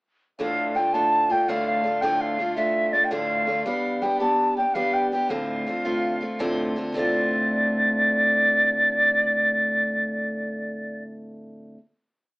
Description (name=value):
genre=celtic folk, Celtic slip jig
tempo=110 BPM (dotted quarters)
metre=9/8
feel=straight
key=D dorian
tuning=A4 = 440 Hz
part: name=wooden flute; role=melody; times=0.4-11.0 s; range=D5 to A5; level=-21 LUFS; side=equal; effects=none
part: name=picked steel-string acoustic guitar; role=accompaniment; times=0.4-11.8 s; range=D2 to G4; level=-26 LUFS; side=equal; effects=none
room=moderate studio ambience, RT60 0.5 s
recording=AM radio sound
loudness=-20 LUFS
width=side -25 dB against mid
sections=0.4-6.9 A section; 6.9-10.3 final chord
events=none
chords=0.4 Dm; 3.7 G; 5.3 Dm7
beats=| 0.40 0.94 1.48 | 2.03 2.57 3.11 | 3.66 4.20 4.75 | 5.30 5.84 6.39 | 6.94 7.50 8.05 | 8.60 9.16 9.71